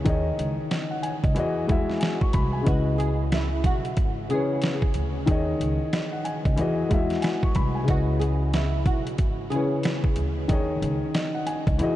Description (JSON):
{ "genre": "hip hop, boom-bap hip-hop", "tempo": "92 BPM", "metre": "4/4", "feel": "swing 61% on 16ths", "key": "C# minor", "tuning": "A4 = 440 Hz", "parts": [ { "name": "dark concert grand piano", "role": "accompaniment", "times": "0.0-12.0 s", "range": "C#3 to C#6", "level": "-26 LUFS", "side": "left 2 dB", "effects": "none" }, { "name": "upright bass", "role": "bass", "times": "0.1-12.0 s", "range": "G#1 to E2", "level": "-28 LUFS", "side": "equal", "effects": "none" }, { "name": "boom bap sampler-style drum kit", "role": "drums", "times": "0.1-12.0 s", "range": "hi-hat, kick drum, snare drum", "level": "-26 LUFS", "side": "equal", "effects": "none" }, { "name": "flamenco guitar", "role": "melody", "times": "2.7-9.8 s", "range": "E4 to G#4", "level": "-34 LUFS", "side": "right 3 dB", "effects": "analog chorus, diffuse ambient delay" } ], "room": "moderate huge ambient reverb, RT60 8.3 s", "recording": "dreamy mix soaked in reverb, cassette tape, nothing above 10.5 kHz", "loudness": "-22 LUFS", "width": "side -14 dB against mid", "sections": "0.0-12.0 A section", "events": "none", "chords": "0.1 G#sus4; 1.4 Emaj7; 2.7 C#m7; 5.3 G#sus4; 6.6 Emaj7; 7.9 C#m7; 10.5 G#sus4" }